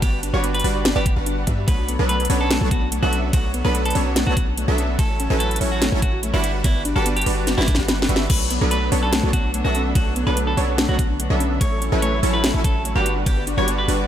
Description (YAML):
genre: future bass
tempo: 145 BPM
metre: 4/4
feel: half-time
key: B minor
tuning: A4 = 440 Hz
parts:
  - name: clean electric guitar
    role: melody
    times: 0.0-13.9 s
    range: E4 to C#5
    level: -27 LUFS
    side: equal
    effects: spring reverb, sidechain pumping, ping-pong delay
  - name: soft round pluck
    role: arpeggios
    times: 0.0-14.1 s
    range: A3 to B4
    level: -30 LUFS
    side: left 4 dB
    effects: chorus, sidechain pumping, digital delay
  - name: supersaw stab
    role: riff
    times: 0.0-14.1 s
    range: F#3 to F#5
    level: -24 LUFS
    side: right 1 dB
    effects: sidechain pumping
  - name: warm 808-style bass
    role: bass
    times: 0.0-14.1 s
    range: G1 to G2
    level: -22 LUFS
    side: equal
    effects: sidechain pumping
  - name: electronic kick drum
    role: drums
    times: 0.0-13.3 s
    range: none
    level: -20 LUFS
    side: equal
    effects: overdrive
  - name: trap drum kit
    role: drums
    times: 0.0-14.0 s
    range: crash cymbal, hi-hat, ride cymbal, snare drum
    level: -24 LUFS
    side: equal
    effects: overdrive
  - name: warm symphonic string section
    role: sustained chords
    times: 8.3-14.1 s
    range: D3 to F#4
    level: -32 LUFS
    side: equal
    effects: sidechain pumping
room: digital ambience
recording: none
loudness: -17 LUFS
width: side -10 dB against mid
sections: 0.0-8.3 A section; 8.3-14.1 A section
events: drop 0.0-8.3, 8.3-14.1; drum fill 7.5-8.3; kick drops out 7.9-8.3; band accent 8.2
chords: 0.0 Gmaj7; 1.7 Bm9; 5.0 F#m7/A; 6.4 Gmaj7; 8.3 Bm9; 11.6 F#m7/A; 13.1 Gmaj7